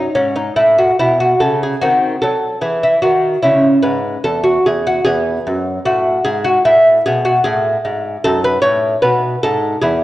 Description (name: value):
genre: classical, baroque-style dance for lute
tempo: 75 BPM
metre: 4/4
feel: rubato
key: C# minor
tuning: A4 = 440 Hz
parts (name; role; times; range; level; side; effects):
- lute; solo; 0.0-10.0 s; E2 to C#5; -12 LUFS; equal; none
room: moderate recital hall reverb, RT60 1.4 s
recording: worn, warbling old tape, cassette tape, warbly pitch drift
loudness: -12 LUFS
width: side -15 dB against mid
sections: 0.0-10.0 A section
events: none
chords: 0.0 C#m; 1.8 D#dim7; 3.4 C#m; 5.1 E; 8.2 B7/F#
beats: 0.15 0.99 | 1.82 2.62 3.44 4.26 | 5.06 5.86 6.66 7.46 | 8.24 9.04 9.83